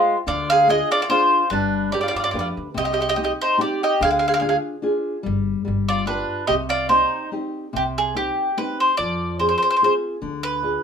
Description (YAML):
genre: italian folk, Italian serenade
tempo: 145 BPM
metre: 3/4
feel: swing 54% on 8ths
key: C harmonic minor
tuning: A4 = 440 Hz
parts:
  - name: bowl-back mandolin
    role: melody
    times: 0.0-10.8 s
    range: F4 to F5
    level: -19 LUFS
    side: equal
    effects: none
  - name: mandolin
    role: second line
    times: 0.0-7.3 s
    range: Ab3 to Ab4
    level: -26 LUFS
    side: right 4 dB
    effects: none
  - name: nylon-string guitar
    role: accompaniment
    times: 0.0-10.8 s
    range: C3 to C5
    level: -26 LUFS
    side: left 2 dB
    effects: none
  - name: upright bass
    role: bass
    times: 0.3-10.8 s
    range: G1 to G2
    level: -30 LUFS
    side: equal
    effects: none
room: moderate studio reverb, RT60 0.5 s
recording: minimal, uncompressed stereo recording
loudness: -18 LUFS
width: side -7 dB against mid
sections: 0.0-7.8 A section; 7.8-10.8 B section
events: none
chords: 0.3 Ddim; 1.5 G; 2.8 Cm; 4.0 Ddim; 5.3 N.C.; 5.7 G7; 6.5 Cm; 9.0 Fm; 10.2 Ddim